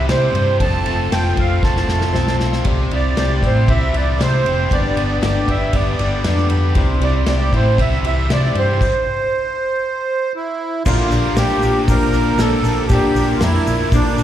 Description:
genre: folk rock and heartland rock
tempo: 117 BPM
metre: 4/4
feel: straight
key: C major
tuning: A4 = 440 Hz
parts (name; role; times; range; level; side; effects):
- accordion; melody; 0.0-14.2 s; D4 to A5; -20 LUFS; right 3 dB; light tremolo tuning, slapback echo
- picked swing-style acoustic guitar; accompaniment; 0.0-14.2 s; G2 to A4; -24 LUFS; left 6 dB; slapback echo
- bright tonewheel organ; sustained chords; 0.0-14.2 s; G4 to C6; -34 LUFS; left 1 dB; none
- overdriven electric guitar; riff; 0.0-14.2 s; F2 to Bb4; -23 LUFS; right 2 dB; slapback echo
- hollow-body short-scale fingered electric bass; bass; 0.0-14.2 s; F1 to C3; -18 LUFS; equal; none
- unplugged drum kit; drums; 0.1-14.2 s; crash cymbal, hi-hat, kick drum, ride cymbal, snare drum; -22 LUFS; equal; none
- tube shaker; percussion; 10.9-14.2 s; none; -39 LUFS; right 3 dB; none
room: small room ambience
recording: live gig heard through the venue's PA, recital hall reverb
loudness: -14 LUFS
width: side -11 dB against mid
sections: 0.0-10.9 A section; 10.9-14.2 B section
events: drum fill 1.6-2.7; stop 8.8-10.9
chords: 0.0 C; 0.6 F; 2.7 C; 4.7 G; 6.8 C; 8.8 N.C.; 10.9 Bb6

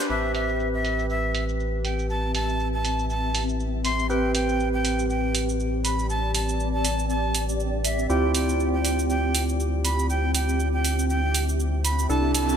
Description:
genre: deep house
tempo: 120 BPM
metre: 4/4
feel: swing 57% on 16ths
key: A minor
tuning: A4 = 436 Hz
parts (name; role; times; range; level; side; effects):
- breathy bright jazz flute; melody; 0.0-12.6 s; E5 to C6; -29 LUFS; right 1 dB; ping-pong delay
- barky tine electric piano; stabs; 0.0-12.6 s; C4 to B4; -28 LUFS; right 1 dB; lush chorus, low-pass filter, ping-pong delay
- round analog bass; bass; 0.1-12.6 s; A1 to D2; -26 LUFS; equal; none
- electronic shaker and hi-hat; drums; 0.1-12.6 s; none; -29 LUFS; right 4 dB; overdrive, low-pass filter on perc, low-pass filter on hats, low-pass filter on snare, low-pass filter on room
- granular cloud pad; texture; 1.4-12.6 s; C4 to E5; -31 LUFS; equal; built-in reverb, analog chorus
- riser; sound effects; 12.3-12.6 s; none; -36 LUFS; equal; none
room: light reverb, small room ambience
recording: bright 1980s-style digital production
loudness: -22 LUFS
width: side -8 dB against mid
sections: 0.1-12.6 A section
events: riser 12.3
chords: 0.1 Am7; 8.1 Dm11

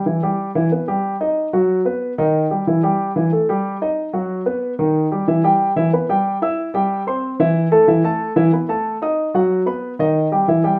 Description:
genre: latin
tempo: 184 BPM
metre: 4/4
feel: straight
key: E minor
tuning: A4 = 441 Hz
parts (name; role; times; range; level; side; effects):
- warm grand piano; solo; 0.0-10.8 s; D#3 to E6; -18 LUFS; equal; none
room: wet small room reverb, RT60 0.6 s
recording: band playing live in one room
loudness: -18 LUFS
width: mono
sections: 0.0-5.3 A section; 5.3-10.8 A section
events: none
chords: 0.1 Em; 1.4 B; 2.7 Emmaj7; 4.0 B; 5.3 Em; 6.6 C; 7.9 Asus2; 9.2 B

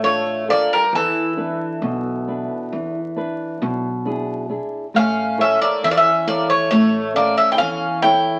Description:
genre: greek folk, Greek bouzouki band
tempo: 135 BPM (eighths)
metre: 9/8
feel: straight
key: unclear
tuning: A4 = 441 Hz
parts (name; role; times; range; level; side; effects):
- Greek bouzouki; melody; 0.0-8.4 s; A4 to G5; -20 LUFS; equal; none
- flamenco guitar; accompaniment; 0.0-8.4 s; B2 to C#5; -24 LUFS; equal; none
- upright bass; bass; 0.0-8.4 s; A1 to E2; -37 LUFS; equal; none
- Greek bouzouki; second line; 0.1-8.4 s; E3 to E4; -28 LUFS; equal; none
room: moderate studio reverb, RT60 0.7 s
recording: very old 78 rpm record, vinyl crackle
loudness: -19 LUFS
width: mono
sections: 0.0-8.4 A section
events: speeding up 0.0-8.4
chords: 0.0 Dm; 0.9 E7; 4.9 A

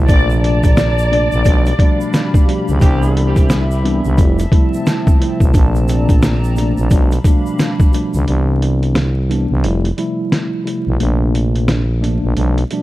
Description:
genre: hip hop, boom-bap hip-hop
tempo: 88 BPM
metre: 4/4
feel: swing 62% on 16ths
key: C major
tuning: A4 = 440 Hz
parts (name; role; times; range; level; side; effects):
- mellow tine electric piano; accompaniment; 0.0-12.8 s; B2 to E4; -19 LUFS; equal; medium stereo tremolo, high-pass filter, low-pass filter
- hollow soft pad; sustained chords; 0.0-8.3 s; C3 to B5; -27 LUFS; left 1 dB; chorus, high-pass filter, low-pass filter
- growling FM bass; bass; 0.0-12.6 s; F1 to Db2; -15 LUFS; equal; none
- warm studio violin section; melody; 0.1-2.3 s; D5; -19 LUFS; equal; high-pass filter, low-pass filter
- trip hop sampler-style drum kit; drums; 0.1-12.8 s; hi-hat, kick drum, snare drum; -14 LUFS; equal; none
- egg shaker; percussion; 0.1-8.3 s; none; -41 LUFS; right 4 dB; none
- warm horn section; stabs; 2.8-3.3 s; E3 to G4; -27 LUFS; right 1 dB; high-pass filter, low-pass filter, digital delay
room: small room ambience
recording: vinyl crackle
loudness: -12 LUFS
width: side -17 dB against mid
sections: 0.0-8.3 A section; 8.3-12.8 B section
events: break 8.3-12.8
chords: 0.1 Bbmaj9; 1.4 G7/B; 2.8 Cmaj7; 4.2 Fmaj7; 5.5 Bbmaj9; 6.9 G7/B; 8.3 Cmaj7; 9.6 Fmaj7; 11.0 Bbmaj9

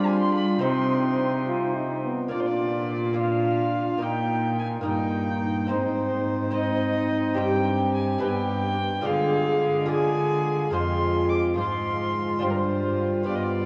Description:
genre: classical, renaissance-style consort dance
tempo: 71 BPM (dotted quarters)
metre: 6/8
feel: straight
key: unclear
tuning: A4 = 441 Hz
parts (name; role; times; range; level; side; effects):
- dark violin; melody; 0.0-13.7 s; Bb4 to D6; -32 LUFS; equal; none
- bright tenor recorder; second line; 0.0-13.7 s; Eb4 to Ab4; -31 LUFS; equal; none
- lute; accompaniment; 0.0-13.7 s; F2 to Eb5; -33 LUFS; equal; none
- mellow trombone; accompaniment; 0.0-13.7 s; G3 to F4; -32 LUFS; equal; none
- rich cello; bass; 0.0-13.7 s; F2 to G3; -31 LUFS; equal; none
room: wet cathedral reverb, RT60 5.5 s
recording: worn, warbling old tape, cassette tape, warbly pitch drift, small room ambience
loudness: -25 LUFS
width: mono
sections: 0.0-2.3 A section; 2.3-13.7 B section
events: none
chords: 0.0 G5; 0.6 Cm; 2.3 Bb; 4.0 Eb/Bb; 5.7 Ab; 7.4 Gsus4; 8.2 G; 9.1 Ddim; 10.7 Fm; 12.4 G7sus4

